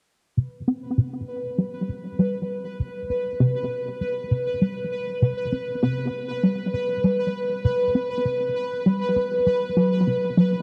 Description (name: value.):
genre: ambient, sequencer-driven space music.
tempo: 99 BPM.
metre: 4/4.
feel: straight.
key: unclear.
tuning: A4 = 440 Hz.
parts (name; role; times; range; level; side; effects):
tight sequenced synth; riff; 0.4-10.6 s; C3 to C4; -26 LUFS; equal; chorus, tape echo.
pulsing gated texture; texture; 1.3-10.6 s; B4; -28 LUFS; equal; chorus, built-in reverb.
room: wet huge ambient reverb, RT60 8.3 s.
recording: cassette tape.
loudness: -24 LUFS.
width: mono.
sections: 0.4-10.6 A section.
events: filter sweep on synth arpeggio sound 0.4-10.6.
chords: 0.4 C5.